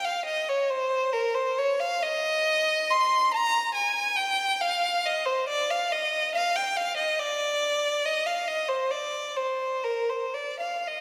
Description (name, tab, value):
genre	classical, free, expressive piece for unaccompanied violin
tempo	53-73 BPM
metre	3/4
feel	rubato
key	Eb major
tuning	A4 = 440 Hz
part	rich violin	solo	0.0-11.0 s	Bb4 to C6	-26 LUFS	equal	none
room	wet concert hall reverb, RT60 2.3 s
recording	heard from further back in the room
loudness	-26 LUFS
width	mono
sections	0.0-11.0 A section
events	none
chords	none